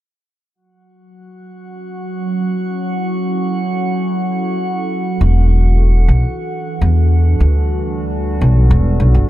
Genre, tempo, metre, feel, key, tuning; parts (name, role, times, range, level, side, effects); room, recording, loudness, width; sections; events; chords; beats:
ambient; 103 BPM; 4/4; straight; A4 = 438 Hz
drifting glass-harmonics texture; texture; 1.6-9.3 s; F#4 to F#5; -26 LUFS; left 1 dB; chorus, built-in reverb
warbly tape-like pad; sustained chords; 1.5-9.3 s; E3 to A4; -21 LUFS; right 2 dB; chorus, built-in reverb, phaser
upright bass; bass; 5.2-9.3 s; E1 to E2; -11 LUFS; equal
light reverb; -13 LUFS; side -14 dB against mid
0.5-9.3 A section
filter sweep on ambient pad 0.5-9.3
0.5 F#m7; 5.2 Em11
| 0.55 1.13 1.71 2.30 | 2.88 3.46 4.04 4.63 | 5.21 5.79 6.37 6.96 | 7.54 8.12 8.70 9.29